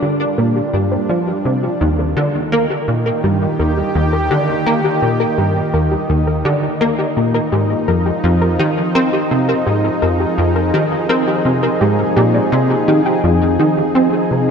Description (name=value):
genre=ambient, sequencer-driven space music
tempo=84 BPM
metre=4/4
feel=straight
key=unclear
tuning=A4 = 441 Hz
part: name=lush unison pad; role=sustained chords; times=0.0-14.5 s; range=Eb3 to Bb4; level=-18 LUFS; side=equal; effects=chorus
part: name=soft round pluck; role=arpeggios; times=0.0-14.4 s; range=F4 to G5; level=-23 LUFS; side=moving between left 5 dB and right 1 dB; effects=chorus, auto-pan, tape echo
part: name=plucky analog bass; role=riff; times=0.0-14.5 s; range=Eb2 to C4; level=-16 LUFS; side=equal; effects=ensemble chorus, tape echo
room=wet lush hall reverb, RT60 2.5 s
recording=dark, warm production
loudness=-13 LUFS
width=side -6 dB against mid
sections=0.0-13.2 A section; 13.2-14.5 B section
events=filter sweep on synth arpeggio sound 0.0-13.2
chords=0.0 Gm7; 1.8 Ebadd9; 7.5 Fm7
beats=0.38 1.09 | 1.81 2.52 3.24 3.95 | 4.67 5.38 6.09 6.81 | 7.52 8.24 8.95 9.67 | 10.38 11.10 11.81 12.52 | 13.24 13.95